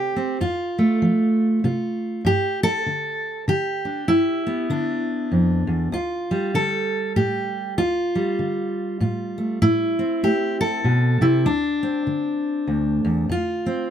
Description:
folk, solo fingerstyle acoustic guitar; 98 BPM; 3/4; swing 60% on 8ths; D dorian; A4 = 440 Hz
fingerpicked steel-string acoustic guitar; solo; 0.0-13.9 s; D2 to A4; -20 LUFS; equal
light reverb; close, detailed microphones; -20 LUFS; side -9 dB against mid
0.0-13.3 A section
0.0 F; 2.2 Gadd9; 5.9 Dm; 9.6 Am7; 11.4 Cadd9/D; 13.3 F5
| 0.41 1.02 1.64 | 2.25 2.86 3.48 | 4.09 4.70 5.32 | 5.93 6.54 7.16 | 7.77 8.38 9.00 | 9.61 10.22 10.83 | 11.45 12.06 12.67 | 13.28 13.89

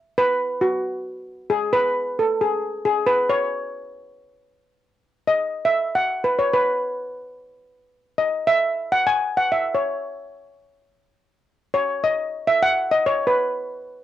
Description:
calypso; 135 BPM; 4/4; straight; A4 = 443 Hz
steel pan; solo; 0.2-13.9 s; F#4 to G#5; -19 LUFS; equal; cassette tape
moderate studio reverb, RT60 0.5 s; home recording on cassette; -19 LUFS; side -12 dB against mid
0.0-13.9 A section
steel pan solo 0.0-13.9
0.17 0.62 1.06 | 1.51 1.96 2.40 2.85 | 3.29 3.74 4.18 4.62 | 5.07 5.51 5.96 6.40 | 6.84 7.29 7.73 8.17 | 8.62 9.06 9.50 9.95 | 10.39 10.83 11.28 11.72 | 12.16 12.61 13.05 13.49

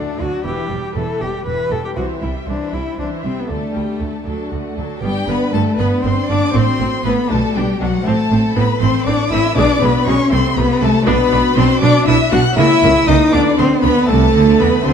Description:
classical, baroque-style concerto movement with solo episodes; 79 BPM (dotted quarters); 6/8; straight; G major; A4 = 440 Hz
rich chamber violin section; melody; 0.0-14.9 s; E5 to F#6; -24 LUFS; left 3 dB
warm cello; melody; 0.0-14.9 s; F#3 to B4; -17 LUFS; left 2 dB
rich chamber violin section; second line; 0.0-14.9 s; F#4 to F#5; -23 LUFS; left 4 dB
lute; accompaniment; 0.0-14.9 s; D2 to B4; -25 LUFS; equal
rich chamber viola section; accompaniment; 0.0-14.9 s; E3 to D4; -24 LUFS; right 2 dB
rich chamber cello section; bass; 0.0-14.9 s; C2 to E3; -22 LUFS; right 4 dB
rich symphonic double bass section; bass; 0.0-14.9 s; E1 to E2; -21 LUFS; right 4 dB
moderate concert hall reverb, RT60 1.8 s; dark, warm production; -13 LUFS; side -7 dB against mid
0.0-5.0 A section; 5.0-14.9 B section
0.5 Em; 2.0 C; 3.5 Dsus4; 4.3 D; 5.0 G; 6.5 F#dim/A; 7.3 G/B; 8.1 Am; 9.6 G#dim/B; 10.3 Am/C; 11.1 Bm; 12.6 A#dim/C#; 13.3 Bm/D; 14.1 Am/C
| 0.46 1.21 | 1.97 2.73 | 3.50 4.26 | 5.03 5.79 | 6.55 7.30 | 8.06 8.81 | 9.56 10.31 | 11.06 11.82 | 12.57 13.33 | 14.09 14.86

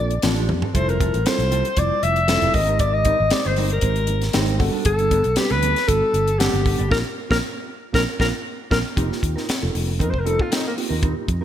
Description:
electric jazz fusion; 117 BPM; 4/4; straight; A4 = 441 Hz
breathy alto saxophone; melody; 0.0-10.7 s; Bb3 to E5; -22 LUFS; left 2 dB
mellow tine electric piano; accompaniment; 0.0-11.4 s; G3 to G5; -28 LUFS; right 2 dB; medium stereo tremolo, wide subtle chorus
fretless electric bass; bass; 0.0-11.4 s; F1 to F2; -22 LUFS; right 1 dB
tight funk drum kit; drums; 0.1-11.4 s; hi-hat, kick drum, snare drum, toms; -24 LUFS; equal; gated reverb
mellow electric guitar; stabs; 0.2-11.4 s; F3 to Bb4; -31 LUFS; right 1 dB; wide subtle chorus
light reverb, studio reverb; bright 1980s-style digital production; -18 LUFS; side -10 dB against mid
0.0-9.0 A section; 9.0-11.4 B section
drum fill 0.5; tine electric piano fill 4.1-4.9, 7.4-9.0; band accent 6.9-9.0; alto saxophone solo 9.0-11.4
0.0 Bbmaj9; 0.8 Fmaj9; 2.5 Abmaj9; 4.6 Gmaj9; 6.9 Bb; 9.0 F9sus4
0.24 | 0.75 1.26 1.78 2.29 | 2.81 3.32 3.83 4.35 | 4.86 5.38 5.89 6.40 | 6.92 7.43 7.95 8.46 | 8.97 9.49 10.00 10.52 | 11.03

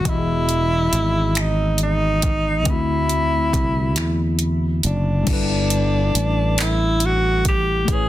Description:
slow six-eight R&B; 46 BPM (dotted quarters); 6/8; straight; A4 = 440 Hz
warm tenor saxophone; melody; 0.0-8.1 s; D4 to G#4; -22 LUFS; equal
tine electric piano; accompaniment; 0.0-8.1 s; D3 to D#5; -26 LUFS; left 5 dB; phaser
sustaining fretless electric bass; bass; 0.1-8.1 s; E1 to E2; -21 LUFS; equal
smooth R&B drum kit; drums; 0.1-8.1 s; crash cymbal, finger snaps, handclaps, hi-hat, kick drum; -23 LUFS; equal; overdrive
light reverb; dense, heavily limited modern master; -17 LUFS; side -14 dB against mid
0.0-5.3 A section; 5.3-8.1 B section
0.1 Emaj7; 2.7 D9; 5.3 G69
| 0.05 1.35 | 2.66 3.96 | 5.27 6.57 | 7.88

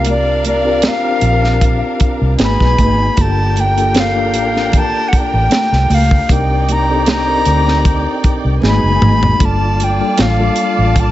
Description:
lush 1970s-style soul; 77 BPM; 4/4; swing 54% on 16ths; G minor; A4 = 438 Hz
breathy bright jazz flute; melody; 0.0-11.1 s; D5 to Cb6; -17 LUFS; left 1 dB; slapback echo
warm studio string section; second line; 0.0-11.1 s; D4 to A5; -23 LUFS; right 1 dB
mellow tine electric piano; accompaniment; 0.0-11.1 s; G3 to Cb5; -20 LUFS; left 2 dB; medium stereo tremolo
vintage muted fingered electric bass; bass; 0.0-11.1 s; Gb1 to D2; -15 LUFS; equal
tight funk drum kit; drums; 0.0-11.1 s; hi-hat, kick drum, snare drum, toms; -16 LUFS; equal
congas; percussion; 0.1-11.1 s; -22 LUFS; right 3 dB
little or no reverb; nothing above 7.8 kHz; -11 LUFS; side -14 dB against mid
0.0-11.1 A section
drum fill 8.6-9.4
0.0 C9sus4; 2.4 Abm7; 3.2 Gm9; 6.3 Cm9; 8.6 Abm7; 9.4 Gm9
| 0.05 0.83 1.61 2.39 | 3.17 3.95 4.73 5.51 | 6.29 7.07 7.85 8.62 | 9.40 10.18 10.96

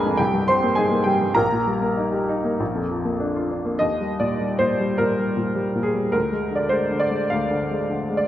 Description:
classical, romantic character piece for solo piano; 96-110 BPM; 4/4; rubato; Eb major; A4 = 439 Hz
clear upright piano; solo; 0.0-8.3 s; Bb1 to C6; -20 LUFS; equal
moderate concert hall reverb, RT60 2.1 s; -20 LUFS; side -12 dB against mid
0.0-3.8 A section; 3.8-8.3 B section
0.2 Cm7; 1.4 Eb/Bb; 2.6 Bb; 3.8 Eb; 6.1 Dm7b5
0.20 0.77 | 1.37 1.99 2.60 3.20 | 3.80 4.40 4.98 5.56 | 6.14 6.72 7.31 7.90

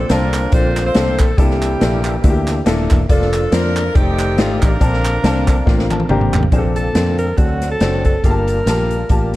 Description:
uptempo gospel; 140 BPM; 4/4; swing 56% on 8ths; Bb major; A4 = 440 Hz
bright saxophone section; melody; 0.0-6.1 s; Bb3 to C5; -22 LUFS; right 1 dB; tape echo
clear grand piano; accompaniment; 0.0-9.4 s; G2 to Bb5; -21 LUFS; left 4 dB
percussive tonewheel organ; sustained chords; 0.0-9.4 s; D3 to D5; -27 LUFS; right 3 dB; slow rotary speaker, chorus vibrato
fingered electric bass; bass; 0.0-9.4 s; Eb1 to F2; -18 LUFS; equal
swinging big-band drum kit; drums; 0.1-9.4 s; hi-hat, kick drum, snare drum, toms; -17 LUFS; equal
group handclap; percussion; 0.3-6.4 s; -28 LUFS; right 3 dB
clear alto saxophone; melody; 6.8-9.4 s; F#4 to Bb4; -21 LUFS; equal; tape echo
small room ambience; dark, warm production; -13 LUFS; side -17 dB against mid
0.0-6.5 A section; 6.5-9.4 B section
grand piano fill 5.2-6.5; drum fill 5.7-6.5
0.0 Bbmaj9; 1.4 C13; 3.1 Bb/F; 4.0 F13; 4.8 Bbmaj9; 7.4 D7; 8.2 Gm9
0.10 0.53 0.96 | 1.39 1.81 2.24 2.67 | 3.10 3.53 3.95 4.38 | 4.81 5.24 5.67 6.09 | 6.52 6.95 7.38 7.81 | 8.24 8.67 9.10

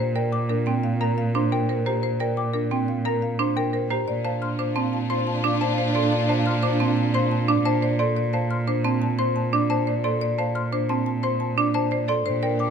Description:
classical, minimalist pattern music; 176 BPM; 6/4; straight; A4 = 440 Hz
marimba with medium hard mallets; melody; 0.0-12.7 s; G4 to C6; -28 LUFS; left 12 dB
buzzing marimba with hard mallets; arpeggios; 0.0-12.7 s; C4 to D5; -27 LUFS; right 9 dB
xylophone with soft rubber mallets; arpeggios; 0.0-12.7 s; G5 to F6; -30 LUFS; left 5 dB
clear cello; bass; 0.0-12.7 s; Bb2; -25 LUFS; right 2 dB
alto flute; second line; 4.1-8.0, 12.3-12.7 s; D4; -29 LUFS; right 3 dB
clear symphonic string section; sustained chords; 4.1-8.0, 12.3-12.7 s; D4 to G4; -30 LUFS; left 1 dB
moderate recital hall reverb, RT60 1.5 s; close, detailed microphones; -21 LUFS; side -7 dB against mid
0.0-12.7 A section
0.0 Bb6; 4.1 Dm/Bb
0.33 0.67 1.01 1.35 1.69 | 2.03 2.37 2.71 3.05 3.40 3.74 | 4.08 4.42 4.76 5.10 5.44 5.78 | 6.12 6.46 6.80 7.14 7.49 7.83 | 8.17 8.51 8.85 9.19 9.53 9.87 | 10.21 10.55 10.89 11.24 11.58 11.92 | 12.26 12.60

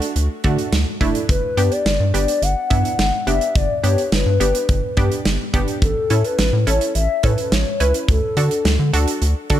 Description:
synth-pop; 106 BPM; 4/4; straight; D major; A4 = 440 Hz
analog pluck; accompaniment; 0.0-9.6 s; A3 to B4; -24 LUFS; right 2 dB; chorus
modern studio drum kit; drums; 0.0-9.6 s; hi-hat, kick drum, snare drum; -21 LUFS; right 1 dB
rubbery square bass; bass; 0.2-9.6 s; F#1 to D3; -19 LUFS; equal
hollow clarinet-like synth lead; melody; 1.3-8.9 s; A4 to F#5; -22 LUFS; left 3 dB; chorus, digital delay
light reverb, small room ambience; -16 LUFS; side -12 dB against mid
0.0-9.6 A section
0.0 D; 1.3 G; 5.8 A; 8.1 D
0.16 0.72 | 1.29 1.86 2.42 2.99 | 3.56 4.12 4.69 5.25 | 5.82 6.38 6.95 7.52 | 8.08 8.65 9.21

